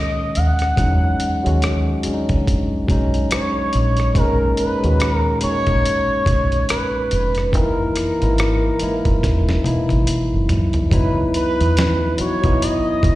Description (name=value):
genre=R&B, neo-soul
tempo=71 BPM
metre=4/4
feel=swing 58% on 16ths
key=B major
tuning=A4 = 440 Hz
part: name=expressive synth lead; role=melody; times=0.0-13.2 s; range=A#4 to F#5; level=-22 LUFS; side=right 1 dB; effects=chorus, plate reverb, slapback echo
part: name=tine electric piano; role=accompaniment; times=0.0-13.2 s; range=A#2 to F#4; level=-22 LUFS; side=left 1 dB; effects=plate reverb
part: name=deep dub fingered electric bass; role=bass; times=0.4-13.2 s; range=E1 to F#2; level=-18 LUFS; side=equal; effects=none
part: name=dusty soul sampler-style drum kit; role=drums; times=0.4-13.2 s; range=hi-hat, kick drum, rim click, snare drum, toms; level=-21 LUFS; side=equal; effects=none
room=light reverb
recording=live gig heard through the venue's PA, recital hall reverb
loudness=-16 LUFS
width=side -16 dB against mid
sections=0.0-10.9 A section; 10.9-13.2 B section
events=drum fill 9.2-10.9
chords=0.0 Bmaj9 (rootless); 0.8 E6 (rootless); 4.2 Bmaj9; 7.5 F#13; 10.9 C#m9